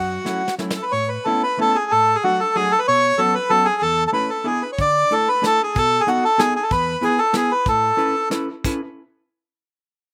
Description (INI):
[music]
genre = musette waltz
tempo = 186 BPM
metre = 3/4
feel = rubato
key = A major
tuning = A4 = 442 Hz
[part]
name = bandoneon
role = melody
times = 0.0-8.3 s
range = F#4 to D5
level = -19 LUFS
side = equal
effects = none
[part]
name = hollow-body jazz guitar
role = accompaniment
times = 0.0-8.8 s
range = E2 to B4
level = -28 LUFS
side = equal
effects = slapback echo
[part]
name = soft brush drum kit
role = drums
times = 0.3-0.8, 4.8-8.7 s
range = crash cymbal, hi-hat, kick drum, snare drum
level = -28 LUFS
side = equal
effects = none
[sound]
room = little or no reverb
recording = recorded outdoors, with no room sound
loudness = -19 LUFS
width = mono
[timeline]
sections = 0.9-8.6 A section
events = drum fill 0.3-0.9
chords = 0.0 F#m7; 0.9 Aadd9; 1.9 D/A; 2.9 Bsus2; 3.8 A/E; 4.5 E7; 4.8 Dsus2; 5.8 B7; 6.7 E; 7.7 Aadd9